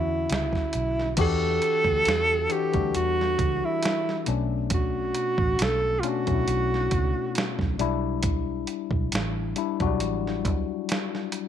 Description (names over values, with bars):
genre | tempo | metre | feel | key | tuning
R&B, neo-soul | 68 BPM | 4/4 | swing 53% on 16ths | E dorian | A4 = 440 Hz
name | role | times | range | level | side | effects
breathy tenor saxophone | melody | 0.0-7.8 s | E4 to A4 | -25 LUFS | right 2 dB | none
tine electric piano | accompaniment | 0.0-11.5 s | B2 to A4 | -29 LUFS | left 12 dB | none
vintage muted fingered electric bass | bass | 0.0-10.7 s | A1 to E2 | -29 LUFS | right 2 dB | none
dusty soul sampler-style drum kit | drums | 0.3-11.5 s | crash cymbal, hi-hat, kick drum, snare drum | -29 LUFS | right 2 dB | none
room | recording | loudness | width
light reverb | 1960s-style stereo | -23 LUFS | side -9 dB against mid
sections
0.0-1.2 A section; 1.2-11.5 B section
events
none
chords
0.0 Dmaj9; 1.2 Em9; 4.3 Bm9; 7.8 Em9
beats
0.29 | 1.18 2.06 2.94 3.82 | 4.70 5.59 6.47 7.35 | 8.23 9.12 10.00 10.88